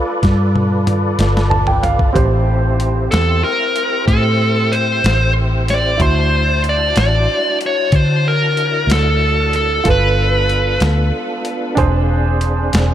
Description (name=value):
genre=slow blues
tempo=62 BPM (dotted quarters)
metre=12/8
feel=straight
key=unclear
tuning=A4 = 440 Hz
part: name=clear upright piano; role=accompaniment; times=0.0-12.9 s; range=C4 to C6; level=-23 LUFS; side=right 4 dB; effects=none
part: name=tonewheel organ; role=sustained chords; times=0.0-12.9 s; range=B3 to A5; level=-23 LUFS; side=equal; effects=chorus vibrato, slow rotary speaker
part: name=vintage muted fingered electric bass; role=bass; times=0.2-12.9 s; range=E1 to D3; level=-16 LUFS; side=equal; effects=none
part: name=boom bap sampler-style drum kit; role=drums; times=0.2-12.9 s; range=hi-hat, kick drum, snare drum, toms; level=-20 LUFS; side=equal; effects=none
part: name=dark smooth lead guitar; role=melody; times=3.1-10.8 s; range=A4 to D5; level=-17 LUFS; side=equal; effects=overdrive, ping-pong delay
room=light reverb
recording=none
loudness=-13 LUFS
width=side -11 dB against mid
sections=0.0-12.9 A section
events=drum fill 0.2-2.2; upright piano fill 1.2-2.2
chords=0.0 G9; 2.2 Am7; 6.0 D9; 9.8 G9; 11.8 Eaug7